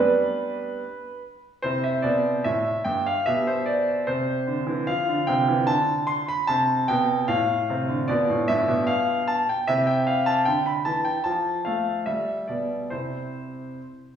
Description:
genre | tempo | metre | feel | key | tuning
classical-period piano sonatina | 74 BPM | 2/4 | uneven beats, rubato | C major | A4 = 439 Hz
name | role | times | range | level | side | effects
clear concert grand piano | solo | 0.0-13.8 s | G2 to C6 | -22 LUFS | equal | none
room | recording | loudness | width
wet recital hall reverb, RT60 1.3 s | heard from further back in the room, studio reverb | -21 LUFS | side -8 dB against mid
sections
0.0-1.6 A section; 1.6-14.2 B section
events
none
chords
0.0 G; 1.6 C; 3.3 G/B; 4.1 C; 4.9 F5; 6.5 C5; 7.3 F/A; 8.1 G7; 9.7 C; 11.3 F; 12.1 G; 12.9 C

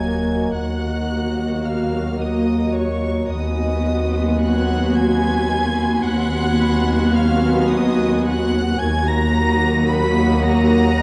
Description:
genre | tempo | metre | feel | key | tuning
cinematic, suspense film score | 109 BPM | 5/4 | straight | Eb minor | A4 = 440 Hz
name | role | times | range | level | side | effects
warm chamber violin section | melody | 0.0-11.0 s | Db6 to Cb7 | -31 LUFS | equal | none
warm chamber violin section | second line | 0.0-11.0 s | Db5 to Cb6 | -29 LUFS | equal | none
warm chamber viola section | accompaniment | 0.0-11.0 s | Bb3 to Gb4 | -27 LUFS | equal | none
glass harmonica | sustained chords | 0.0-11.0 s | Cb4 to Bb5 | -31 LUFS | equal | none
warm French horn section | sustained chords | 0.0-11.0 s | Gb3 to Cb4 | -27 LUFS | equal | none
dark chamber cello section | bass | 0.0-11.0 s | Eb2 | -24 LUFS | equal | none
warm chamber double bass section | bass | 0.0-11.0 s | Eb2 | -25 LUFS | equal | none
sub drop | sound effects | 0.0-0.6 s | none | -41 LUFS | equal | none
concert harp | texture | 0.0-11.0 s | Eb5 to Cb6 | -36 LUFS | equal | none
warm chamber violin section | texture | 3.3-11.0 s | Gb5 to Ab6 | -37 LUFS | equal | none
room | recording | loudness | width
moderate scoring stage reverb, RT60 1.7 s | dark, warm production, vinyl crackle, nothing above 10.9 kHz | -19 LUFS | mono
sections
0.0-11.0 A section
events
impact 0.0-0.6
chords
0.0 Ebm; 3.3 Abm7/Eb; 8.8 Ebm

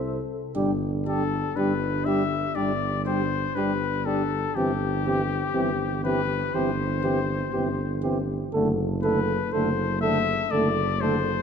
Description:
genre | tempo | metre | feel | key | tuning
classical, brass quintet | 60 BPM | 4/4 | straight | G major | A4 = 440 Hz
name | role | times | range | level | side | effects
bright trumpet | melody | 0.0-11.4 s | G4 to E5 | -28 LUFS | left 9 dB | none
mellow flugelhorn | second line | 0.0-11.2 s | G4 to C5 | -30 LUFS | right 5 dB | none
mellow French horn | accompaniment | 0.0-11.2 s | A3 to A4 | -31 LUFS | left 4 dB | none
mellow tuba | bass | 0.0-11.4 s | F#1 to C2 | -28 LUFS | right 2 dB | none
warm trombone | accompaniment | 0.6-11.2 s | D3 to G3 | -33 LUFS | right 1 dB | none
room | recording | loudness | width
wet concert hall reverb, RT60 2.1 s | dark, warm production | -23 LUFS | side -7 dB against mid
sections
0.6-11.4 A section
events
none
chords
0.0 C; 0.6 G5; 4.6 C/G; 8.5 D/F#

